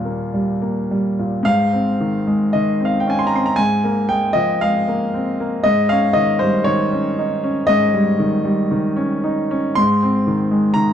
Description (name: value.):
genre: classical, romantic nocturne for solo piano.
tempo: 51-63 BPM.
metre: 4/4.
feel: rubato.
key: Ab major.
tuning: A4 = 440 Hz.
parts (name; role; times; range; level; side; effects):
clear grand piano; solo; 0.0-10.9 s; Eb2 to C6; -16 LUFS; equal; none.
room: light reverb.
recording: dark, warm production.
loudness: -16 LUFS.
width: side -9 dB against mid.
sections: 0.0-1.5 A section; 1.5-10.9 B section.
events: none.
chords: 0.0 Eb; 1.5 Ab; 3.6 Bb5/Ab; 5.6 Eb7/Ab; 9.8 Ab.